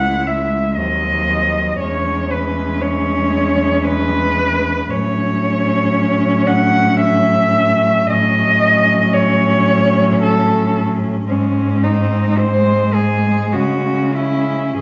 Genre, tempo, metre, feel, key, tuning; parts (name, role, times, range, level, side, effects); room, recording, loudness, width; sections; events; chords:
classical, lyrical piece for cello ensemble; 47-60 BPM; 3/4; rubato; A4 = 440 Hz
muted cello; melody; 0.0-14.8 s; C#4 to F#5; -19 LUFS; equal
muted cello; second line; 0.0-14.8 s; C4 to E4; -25 LUFS; equal
muted cello; accompaniment; 0.0-14.8 s; Gb3 to G#3; -24 LUFS; equal
muted cello; bass; 0.0-14.8 s; C#2 to C#3; -21 LUFS; equal
wet recital hall reverb, RT60 1.5 s; nothing above 7.6 kHz; -16 LUFS; mono
0.0-14.8 A section
0.0 C#m; 0.8 Cdim/Eb; 1.8 C#m/E; 4.9 F#m/A; 11.3 G#; 13.5 C#m